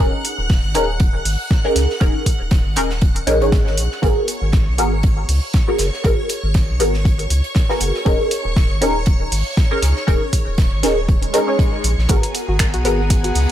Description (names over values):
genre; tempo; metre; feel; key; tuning
deep house; 119 BPM; 4/4; swing 55% on 16ths; G# minor; A4 = 437 Hz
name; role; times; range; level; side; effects
filtered dub chord stab; stabs; 0.0-13.0 s; B3 to C#5; -20 LUFS; equal; phaser, ensemble chorus, cassette tape, sidechain pumping, tape echo
round analog bass; bass; 0.0-13.5 s; D#1 to C#2; -20 LUFS; equal; sidechain pumping
big rock drum kit; drums; 0.0-13.5 s; hi-hat, snare drum; -32 LUFS; right 4 dB; sidechain pumping on hats, high-pass filter on hats, studio reverb, high-pass filter on snare, high-pass filter on room
string machine, violins; texture; 0.0-13.5 s; G#4 to F#6; -28 LUFS; equal; ensemble chorus
deep house drum kit; drums; 0.2-13.5 s; finger snaps, hi-hat; -23 LUFS; equal; studio reverb
electronic kick drum; drums; 0.5-13.2 s; none; -16 LUFS; equal; studio reverb
swell; sound effects; 11.2-12.1 s; none; -28 LUFS; left 4 dB; none
airy breathy pad; sustained chords; 12.1-13.5 s; B3 to A#5; -26 LUFS; left 1 dB; chorus, sidechain pumping
soft round pluck; arpeggios; 12.5-13.3 s; F#4 to B4; -27 LUFS; left 1 dB; chorus, sidechain pumping, tape echo
room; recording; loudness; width
digital ambience; none; -15 LUFS; side -11 dB against mid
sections
0.0-13.5 A section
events
swell 11.2-12.1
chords
0.0 D#7sus4; 4.0 G#m9; 8.1 D#7sus4; 12.1 G#m9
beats
0.50 1.00 1.51 | 2.01 2.52 3.02 3.52 | 4.03 4.53 5.04 5.54 | 6.04 6.55 7.05 7.56 | 8.06 8.57 9.07 9.57 | 10.08 10.58 11.09 11.59 | 12.10 12.60 13.10